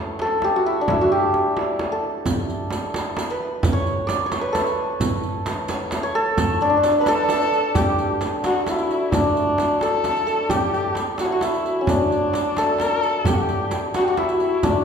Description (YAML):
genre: Persian modal ensemble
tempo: 87 BPM (dotted quarters)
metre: 6/8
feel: straight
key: D dastgah mahur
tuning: A4 = 439 Hz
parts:
  - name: santur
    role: melody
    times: 0.0-14.8 s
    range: A3 to D5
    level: -21 LUFS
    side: equal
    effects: none
  - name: frame drum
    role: percussion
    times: 0.2-14.7 s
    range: none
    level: -28 LUFS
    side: right 2 dB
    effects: none
  - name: tombak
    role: percussion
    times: 0.2-14.7 s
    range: none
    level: -28 LUFS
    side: right 1 dB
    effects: none
  - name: riq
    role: percussion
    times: 2.3-14.7 s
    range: none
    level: -33 LUFS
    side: right 3 dB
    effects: none
  - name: warm kamancheh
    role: second line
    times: 7.0-14.8 s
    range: D4 to B4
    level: -25 LUFS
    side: left 2 dB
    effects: none
room: wet recital hall reverb, RT60 1.7 s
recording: recorded in a church or concert hall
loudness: -19 LUFS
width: side -6 dB against mid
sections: 0.0-7.8 A section; 7.8-14.8 B section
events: none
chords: none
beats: 0.20 | 0.88 1.57 | 2.26 2.95 | 3.63 4.32 | 5.01 5.70 | 6.38 7.07 | 7.75 8.44 | 9.13 9.82 | 10.50 11.19 | 11.88 12.57 | 13.26 13.95 | 14.63